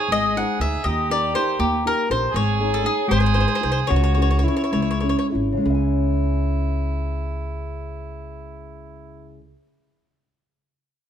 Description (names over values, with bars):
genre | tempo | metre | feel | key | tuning
italian folk, Italian serenade | 62-80 BPM (dotted quarters) | 6/8 | straight | C# harmonic minor | A4 = 440 Hz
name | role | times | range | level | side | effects
bowl-back mandolin | melody | 0.0-5.3 s | G4 to F#5 | -23 LUFS | left 2 dB | none
breathy soprano saxophone | second line | 0.0-9.5 s | E4 to G#4 | -28 LUFS | right 6 dB | none
nylon-string guitar | accompaniment | 0.0-9.6 s | C#3 to G#5 | -25 LUFS | left 2 dB | none
upright bass | bass | 0.1-9.5 s | G#1 to D#2 | -23 LUFS | equal | none
room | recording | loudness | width
light reverb | close, detailed microphones | -19 LUFS | side -9 dB against mid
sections
0.0-5.6 A section; 5.6-9.5 B section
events
slowing down 2.3-5.6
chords
0.0 G#; 0.8 D#; 2.3 G#sus4; 3.1 G#; 3.9 C#m